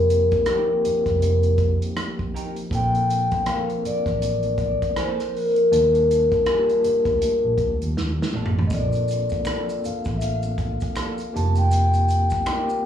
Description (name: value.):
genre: R&B, neo-soul.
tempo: 80 BPM.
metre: 4/4.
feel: swing 59% on 16ths.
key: Bb major.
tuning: A4 = 440 Hz.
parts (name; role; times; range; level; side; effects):
vibraphone with soft mallets; melody; 0.0-12.9 s; Bb4 to A5; -21 LUFS; left 2 dB; slapback echo.
overdriven tine electric piano; accompaniment; 0.0-12.9 s; F3 to A5; -29 LUFS; left 1 dB; medium tremolo, slapback echo.
vintage muted fingered electric bass; bass; 0.0-12.3 s; F1 to Eb2; -22 LUFS; right 1 dB; none.
warm soul drum kit; drums; 0.1-12.7 s; hi-hat, kick drum, rim click, snare drum, toms; -28 LUFS; right 1 dB; none.
vintage hollow-body jazz guitar; second line; 0.5-12.7 s; F3 to Bb4; -35 LUFS; right 7 dB; plate reverb, slapback echo.
maracas and finger snaps; percussion; 8.7-12.8 s; none; -45 LUFS; left 1 dB; slapback echo.
room: moderate club ambience, RT60 0.5 s.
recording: live gig heard through the venue's PA, club reverb, studio reverb.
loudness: -19 LUFS.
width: side -9 dB against mid.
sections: 0.0-12.9 A section.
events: drum fill 8.0-8.7.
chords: 0.0 F9sus4; 2.7 Bbmaj7; 5.7 Ebmaj9#11; 8.7 Bbmaj7; 11.3 F9sus4.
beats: 0.46 1.21 1.96 | 2.71 3.46 4.21 4.96 | 5.71 6.46 7.21 7.96 | 8.71 9.46 10.21 10.96 | 11.71 12.46.